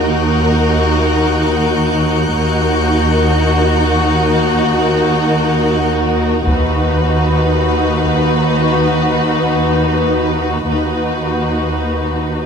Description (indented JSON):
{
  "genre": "cinematic, suspense film score",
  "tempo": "free time",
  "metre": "none",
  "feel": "none",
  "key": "Eb minor",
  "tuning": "A4 = 440 Hz",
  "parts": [
    { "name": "rich studio violin section", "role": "melody", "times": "0.0-12.5 s", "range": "Bb4 to B4", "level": "-20 LUFS", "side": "left 4 dB", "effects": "none" },
    { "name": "dark studio violin section", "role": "second line", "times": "0.0-12.5 s", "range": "Gb4", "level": "-19 LUFS", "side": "left 1 dB", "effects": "none" },
    { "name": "warm studio viola section", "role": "accompaniment", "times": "0.0-12.5 s", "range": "Eb4", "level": "-20 LUFS", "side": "left 1 dB", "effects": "none" },
    { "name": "rich studio double bass section", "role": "bass", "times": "0.0-12.5 s", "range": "Eb2", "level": "-19 LUFS", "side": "right 1 dB", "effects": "none" },
    { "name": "warm studio cello section", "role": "bass", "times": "0.0-12.5 s", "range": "Eb2", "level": "-18 LUFS", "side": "right 2 dB", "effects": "none" },
    { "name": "rich studio violin section", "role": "texture", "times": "0.0-5.9 s", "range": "Gb6 to Db7", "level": "-25 LUFS", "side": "left 5 dB", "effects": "none" },
    { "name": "taiko ensemble", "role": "drums", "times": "6.5-8.5 s", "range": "none", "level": "-22 LUFS", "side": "equal", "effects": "none" }
  ],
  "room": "light reverb",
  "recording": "none",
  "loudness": "-12 LUFS",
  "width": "side -6 dB against mid",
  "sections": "0.0-12.5 A section",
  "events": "none",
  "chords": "0.0 Ebm",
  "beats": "free time"
}